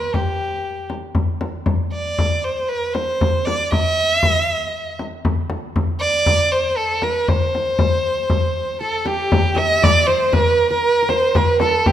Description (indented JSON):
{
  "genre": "Arabic maqam ensemble",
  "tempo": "118 BPM",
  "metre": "4/4",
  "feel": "straight",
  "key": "C maqam rast",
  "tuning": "A4 = 440 Hz",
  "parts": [
    { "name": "rich violin", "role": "melody", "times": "0.0-11.9 s", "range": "G4 to Eb5+48c", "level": "-18 LUFS", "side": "right 1 dB", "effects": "none" },
    { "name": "frame drum", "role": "percussion", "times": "0.1-11.9 s", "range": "none", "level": "-20 LUFS", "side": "left 2 dB", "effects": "none" },
    { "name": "qanun", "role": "second line", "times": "8.8-11.9 s", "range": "G4 to E5-50c", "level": "-22 LUFS", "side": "right 4 dB", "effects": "none" }
  ],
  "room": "moderate concert hall reverb, RT60 2.0 s",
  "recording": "minimal, uncompressed stereo recording",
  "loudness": "-16 LUFS",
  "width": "side -11 dB against mid",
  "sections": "0.0-9.3 A section; 9.3-11.9 B section",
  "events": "none",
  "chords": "none"
}